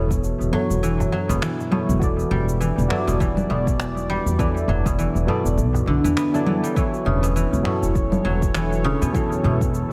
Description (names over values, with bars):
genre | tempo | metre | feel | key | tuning
organic downtempo | 101 BPM | 4/4 | swing 57% on 16ths | E dorian | A4 = 439 Hz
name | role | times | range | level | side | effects
deep mellow chord stab | accompaniment | 0.0-9.9 s | F#3 to D5 | -30 LUFS | equal | chorus, sidechain pumping, tape echo
warm analog pad | sustained chords | 0.0-9.9 s | E3 to D5 | -31 LUFS | equal | chorus, sidechain pumping
guzheng | arpeggios | 0.0-9.9 s | B2 to B3 | -27 LUFS | equal | analog delay
upright bass | bass | 0.0-9.8 s | E1 to E2 | -26 LUFS | equal | sidechain pumping
electronic cabasa, finger snaps and congas | drums | 0.1-9.9 s | none | -31 LUFS | equal | tape echo
electronic kick drum | drums | 0.1-9.7 s | none | -26 LUFS | equal | none
darbuka | percussion | 0.5-9.6 s | none | -34 LUFS | equal | none
room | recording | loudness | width
moderate echo chamber reverb, RT60 2.1 s | echo-heavy mix | -21 LUFS | mono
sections
0.0-9.9 A section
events
none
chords
0.0 F#m/E; 2.0 Em7; 6.8 F#m/E